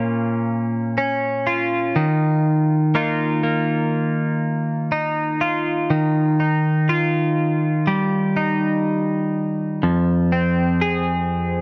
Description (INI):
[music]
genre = pop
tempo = 61 BPM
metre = 4/4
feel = straight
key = unclear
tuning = A4 = 436 Hz
[part]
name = twelve-string electric guitar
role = solo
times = 0.0-11.6 s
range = F2 to Ab4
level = -20 LUFS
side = equal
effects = none
[sound]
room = little or no reverb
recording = dry, close 1970s-style studio recording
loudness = -20 LUFS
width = mono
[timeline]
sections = 0.0-5.9 A section; 5.9-11.6 B section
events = none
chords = 0.0 Bbm; 2.0 Ebsus2; 5.9 Ebadd9; 9.8 Fm7